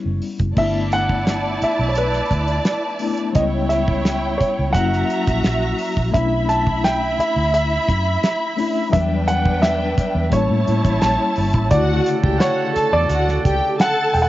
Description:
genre	lush 1970s-style soul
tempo	86 BPM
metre	4/4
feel	straight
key	D major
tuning	A4 = 439 Hz
part	dark grand piano	melody	0.0-14.3 s	B4 to A5	-22 LUFS	right 1 dB	cassette tape
part	reed electric piano	accompaniment	0.0-14.3 s	C#3 to E4	-25 LUFS	left 5 dB	fast tremolo, cassette tape
part	vintage muted fingered electric bass	bass	0.1-14.3 s	E1 to A2	-22 LUFS	right 1 dB	none
part	damped 70s drum kit	drums	0.2-14.3 s	crash cymbal, hi-hat, kick drum, snare drum	-21 LUFS	equal	none
part	warm studio string section	second line	0.6-14.3 s	D4 to B5	-22 LUFS	right 1 dB	cassette tape
part	warm horn section	stabs	11.7-14.1 s	C#3 to A4	-27 LUFS	right 8 dB	cassette tape
room	light reverb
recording	home recording on cassette, nothing above 7.5 kHz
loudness	-16 LUFS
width	side -15 dB against mid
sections	0.6-11.7 A section; 11.7-14.3 B section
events	none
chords	0.0 A7 (rootless); 0.6 G6; 3.4 C#m7b5; 4.8 F#7; 6.1 Bm11; 8.9 Em9; 10.3 A7b9; 11.7 Dmaj7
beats	| 0.57 1.27 1.97 2.66 | 3.36 4.06 4.75 5.45 | 6.15 6.84 7.54 8.24 | 8.93 9.63 10.33 11.02 | 11.72 12.41 13.11 13.81

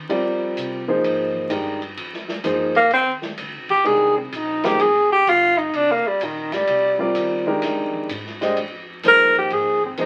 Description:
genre	modal jazz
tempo	127 BPM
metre	4/4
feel	swing 66% on 8ths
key	F dorian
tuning	A4 = 439 Hz
part	upright bass	bass	0.0-10.1 s	F1 to C3	-43 LUFS	equal	none
part	warm concert grand piano	accompaniment	0.1-10.1 s	Eb3 to Eb5	-24 LUFS	equal	none
part	open jazz drum kit	drums	0.1-10.1 s	hi-hat, kick drum, ride cymbal, snare drum	-34 LUFS	equal	none
part	warm tenor saxophone	melody	2.8-10.1 s	Eb3 to Bb4	-18 LUFS	equal	none
room	moderate small room reverb, RT60 0.6 s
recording	very old 78 rpm record, vinyl crackle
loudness	-20 LUFS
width	mono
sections	0.0-10.1 A section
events	tenor saxophone solo 0.0-10.1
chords	0.0 Fm9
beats	| 0.09 0.56 1.03 1.50 | 1.97 2.44 2.92 3.39 | 3.86 4.33 4.80 5.27 | 5.74 6.21 6.69 7.16 | 7.63 8.10 8.57 9.04 | 9.52 9.99

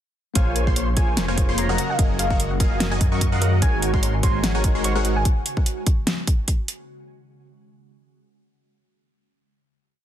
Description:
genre	future bass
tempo	147 BPM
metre	4/4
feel	swing 55% on 16ths, half-time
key	unclear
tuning	A4 = 440 Hz
part	tine electric piano	accompaniment	0.3-5.3 s	Gb3 to Gb5	-32 LUFS	left 3 dB	medium stereo tremolo, sidechain pumping, digital delay
part	warm velvety synth lead	melody	0.4-5.3 s	F5 to Db6	-30 LUFS	equal	chorus, tremolo, sidechain pumping, tape echo
part	ethereal airy pad	sustained chords	1.1-5.2 s	Db3 to Gb4	-34 LUFS	right 3 dB	none
part	soft round pluck	arpeggios	0.4-5.2 s	Bb4 to Ab5	-36 LUFS	left 3 dB	none
part	supersaw stab	riff	0.4-5.2 s	Gb3 to Db6	-27 LUFS	equal	vintage 12-bit sampler grit, sidechain pumping
part	wide detuned saw bass	bass	0.4-5.2 s	F1 to Gb2	-24 LUFS	equal	chorus, sidechain pumping
part	electronic kick drum	drums	0.4-6.6 s	none	-20 LUFS	equal	none
part	pop drum kit	drums	0.4-6.8 s	hi-hat, snare drum	-24 LUFS	equal	overdrive
room	little or no reverb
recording	dense, heavily limited modern master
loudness	-19 LUFS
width	side -11 dB against mid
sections	0.4-6.9 drop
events	drop 0.4-6.9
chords	0.4 Bbm9; 1.8 Gb6; 3.6 Ab7sus4; 5.3 N.C.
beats	| 0.35 0.76 1.17 1.58 | 1.99 2.40 2.80 3.21 | 3.62 4.03 4.44 4.84 | 5.25 5.66 6.07 6.48

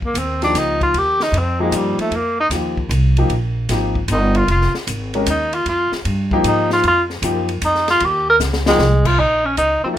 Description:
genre	modal jazz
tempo	153 BPM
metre	3/4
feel	swing 67% on 8ths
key	Bb dorian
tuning	A4 = 440 Hz
part	upright bass	bass	0.0-9.9 s	F1 to Ab2	-20 LUFS	equal	none
part	open jazz drum kit	drums	0.0-9.7 s	crash cymbal, hi-hat, kick drum, ride cymbal, snare drum	-26 LUFS	left 2 dB	none
part	breathy tenor saxophone	melody	0.1-10.0 s	G3 to Bb4	-16 LUFS	equal	none
part	warm grand piano	accompaniment	0.4-10.0 s	F3 to Bb4	-20 LUFS	left 3 dB	none
room	light reverb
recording	minimal, uncompressed stereo recording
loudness	-15 LUFS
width	side -11 dB against mid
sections	0.0-9.2 A section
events	tenor saxophone solo 0.0-9.2; drum fill 8.4-8.8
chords	0.0 Bb7sus4; 9.2 Bbsus4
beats	0.16 0.55 | 0.94 1.34 1.73 | 2.13 2.52 2.91 | 3.31 3.70 4.09 | 4.49 4.88 5.27 | 5.66 6.06 6.45 | 6.84 7.23 7.62 | 8.02 8.41 8.80 | 9.19 9.58 9.97

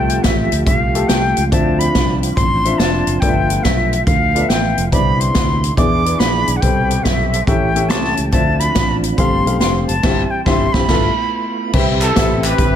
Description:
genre	uptempo gospel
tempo	141 BPM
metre	4/4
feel	swing 66% on 8ths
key	C major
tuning	A4 = 440 Hz
part	jazz flute	melody	0.0-11.6 s	E5 to D6	-19 LUFS	equal	tape echo
part	warm concert grand piano	accompaniment	0.0-12.8 s	G2 to F5	-21 LUFS	left 5 dB	none
part	mellow tonewheel organ	sustained chords	0.0-12.8 s	C3 to B5	-23 LUFS	right 4 dB	slow rotary speaker, chorus vibrato
part	fingered electric bass	bass	0.0-12.8 s	F1 to E2	-20 LUFS	equal	none
part	swinging big-band drum kit	drums	0.1-12.7 s	crash cymbal, hi-hat, kick drum, snare drum	-18 LUFS	equal	none
part	warm horn section	melody	12.0-12.8 s	E4 to B4	-18 LUFS	right 1 dB	none
part	group handclap	percussion	12.0-12.5 s	none	-26 LUFS	right 3 dB	none
room	light reverb, small room reverb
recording	none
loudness	-13 LUFS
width	side -9 dB against mid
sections	0.0-11.7 A section; 11.7-12.8 B section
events	band accent 10.0-11.7; grand piano fill 11.1-11.7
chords	0.0 Fmaj9; 1.5 Dm9; 3.2 G13; 4.9 Cmaj9; 5.8 E7; 6.6 Am9/C; 7.5 A7; 8.3 Dm9; 9.2 G9sus4; 10.0 C/G; 10.9 G13; 11.7 Cmaj7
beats	0.24 0.67 1.09 | 1.52 1.94 2.37 2.79 | 3.22 3.65 4.07 4.50 | 4.92 5.35 5.78 6.20 | 6.63 7.05 7.48 7.91 | 8.33 8.76 9.18 9.61 | 10.03 10.46 10.89 11.31 | 11.74 12.16 12.59

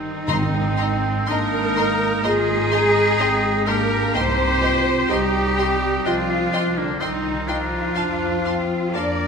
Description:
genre	cinematic, emotional film score for orchestra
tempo	63 BPM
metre	4/4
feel	rubato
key	Ab lydian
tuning	A4 = 438 Hz
part	warm oboe	second line	0.0-9.3 s	Bb3 to Bb4	-27 LUFS	right 2 dB	none
part	warm symphonic viola section	accompaniment	0.0-9.3 s	D4 to D5	-26 LUFS	equal	none
part	mellow French horn section	sustained chords	0.0-9.3 s	D3 to D4	-26 LUFS	left 2 dB	none
part	rich symphonic cello section	bass	0.0-9.3 s	D4 to D5	-24 LUFS	equal	none
part	rich symphonic double bass section	bass	0.0-9.3 s	Ab1 to F2	-26 LUFS	right 2 dB	none
part	clear symphonic violin section	melody	0.3-9.0 s	C6	-34 LUFS	left 3 dB	none
part	dark symphonic violin section	second line	0.3-9.0 s	Eb5 to Bb5	-30 LUFS	left 1 dB	none
part	warm clarinet	second line	0.3-9.3 s	Bb3 to F4	-28 LUFS	equal	none
part	timpani	percussion	0.3-1.7 s	Ab2	-27 LUFS	equal	none
room	wet concert hall reverb, RT60 2.1 s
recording	minimal, uncompressed stereo recording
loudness	-18 LUFS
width	side -5 dB against mid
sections	0.3-9.3 A section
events	none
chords	0.3 Abadd9; 4.1 Cm; 8.0 F5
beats	| 0.28 1.28 2.24 3.19 | 4.14 5.10 6.05 7.00 | 7.96 8.95

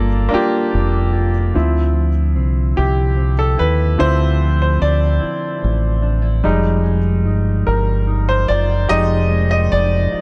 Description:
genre	slow six-eight R&B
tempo	49 BPM (dotted quarters)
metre	6/8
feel	straight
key	unclear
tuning	A4 = 439 Hz
part	mellow electric guitar	second line	0.0-10.2 s	D3 to G4	-27 LUFS	equal	none
part	clear baby grand piano	accompaniment	0.0-10.2 s	F3 to Eb5	-22 LUFS	equal	none
part	deep dub fingered electric bass	bass	0.0-10.2 s	F1 to Eb2	-18 LUFS	equal	none
room	light reverb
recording	dark, warm production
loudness	-17 LUFS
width	mono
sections	0.0-1.5 A section; 1.5-10.2 B section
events	grand piano solo 1.5-10.2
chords	0.0 Gm9; 1.5 Dm9; 6.4 Fm9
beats	0.32 | 1.54 2.77 | 3.99 5.22 | 6.44 7.67 | 8.89 10.11

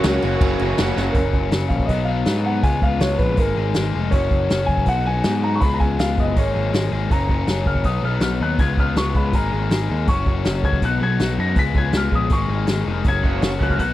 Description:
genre	indie rock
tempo	161 BPM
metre	4/4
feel	straight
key	F# major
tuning	A4 = 440 Hz
part	warm upright piano	melody	0.0-13.9 s	F#4 to B6	-25 LUFS	left 1 dB	tape echo
part	phased analog pad	sustained chords	0.0-1.1 s	A#4 to C#6	-37 LUFS	right 1 dB	none
part	biting overdriven guitar	riff	0.0-13.9 s	F#2 to G#4	-24 LUFS	left 7 dB	none
part	raw garage guitar	riff	0.0-1.2, 13.2-13.8 s	F#2 to F#4	-27 LUFS	right 6 dB	overdrive, analog chorus, tape echo
part	growling picked electric bass	bass	0.0-13.9 s	E#1 to G#2	-22 LUFS	right 1 dB	overdrive
part	vintage drum kit	drums	0.0-13.9 s	crash cymbal, hi-hat, kick drum, snare drum	-21 LUFS	equal	none
room	little or no reverb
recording	dry, close 1970s-style studio recording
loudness	-17 LUFS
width	side -14 dB against mid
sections	0.0-1.1 A section; 1.1-7.1 B section; 7.1-13.9 C section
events	drum fill 1.0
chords	0.0 F#; 1.9 B; 2.6 C#7; 3.4 G#sus2; 4.1 F#; 4.9 B; 5.6 C#7; 6.4 G#sus2; 7.1 F#; 7.9 B; 8.6 C#7; 9.3 G#sus2; 10.1 F#; 10.8 B; 11.6 C#7; 12.3 G#sus2; 13.1 F#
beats	0.04 0.41 0.78 | 1.15 1.52 1.89 2.26 | 2.64 3.01 3.38 3.76 | 4.13 4.50 4.87 5.25 | 5.62 5.99 6.36 6.74 | 7.11 7.48 7.85 8.22 | 8.60 8.97 9.34 9.71 | 10.08 10.45 10.82 11.20 | 11.57 11.94 12.31 12.68 | 13.05 13.42 13.79

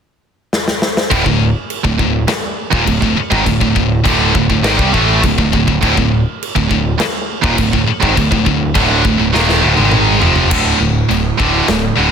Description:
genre	heavy metal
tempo	102 BPM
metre	4/4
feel	straight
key	D minor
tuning	A4 = 440 Hz
part	big rock drum kit	drums	0.5-11.8 s	china cymbal, crash cymbal, kick drum, snare drum, toms	-18 LUFS	left 1 dB	none
part	heavy high-gain guitar	riff	1.1-12.1 s	D2 to A3	-16 LUFS	left 13 dB	distortion
part	high-gain distorted guitar	riff	1.1-12.1 s	D2 to A3	-15 LUFS	right 9 dB	distortion
part	growling picked electric bass	bass	1.1-12.1 s	D1 to C2	-18 LUFS	left 1 dB	overdrive
room	little or no reverb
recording	dense, heavily limited modern master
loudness	-11 LUFS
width	side -7 dB against mid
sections	0.0-1.1 A section; 1.1-10.5 B section; 10.5-12.1 C section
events	drum fill 0.5-1.1, 9.3-10.5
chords	0.0 N.C.; 1.1 Dm; 10.5 D5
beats	0.53 | 1.12 1.71 2.29 2.88 | 3.47 4.06 4.64 5.23 | 5.82 6.41 6.99 7.58 | 8.17 8.75 9.34 9.93 | 10.52 11.10 11.69

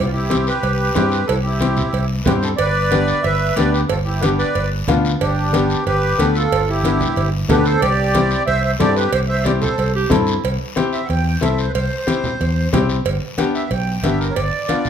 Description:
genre	latin, cumbia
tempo	184 BPM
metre	4/4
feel	straight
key	C major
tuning	A4 = 440 Hz
part	accordion	melody	0.0-14.9 s	D4 to G5	-20 LUFS	right 2 dB	light tremolo tuning
part	fingered electric bass	bass	0.0-14.5 s	G1 to G2	-20 LUFS	equal	none
part	clear upright piano	accompaniment	0.3-14.9 s	B3 to A4	-21 LUFS	left 5 dB	none
part	congas	percussion	0.3-14.9 s	none	-24 LUFS	right 1 dB	none
part	cowbell and timbales	percussion	0.3-14.9 s	none	-26 LUFS	right 7 dB	none
part	guiro	percussion	0.3-14.9 s	none	-32 LUFS	left 5 dB	none
part	clear clarinet	second line	10.0-10.4 s	E4 to G4	-23 LUFS	right 6 dB	none
room	moderate large studio reverb, RT60 1.1 s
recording	minimal, uncompressed stereo recording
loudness	-15 LUFS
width	side -8 dB against mid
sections	0.0-10.4 A section; 10.4-14.9 B section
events	accordion solo 10.4-14.9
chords	0.0 C; 2.6 G; 7.8 C; 13.1 G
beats	0.30 0.63 0.96 | 1.28 1.61 1.94 2.26 | 2.59 2.92 3.25 3.57 | 3.90 4.23 4.55 4.88 | 5.21 5.53 5.86 6.19 | 6.51 6.84 7.17 7.50 | 7.82 8.15 8.48 8.80 | 9.13 9.46 9.78 10.11 | 10.44 10.76 11.09 11.42 | 11.74 12.07 12.40 12.72 | 13.05 13.38 13.71 14.03 | 14.36 14.69

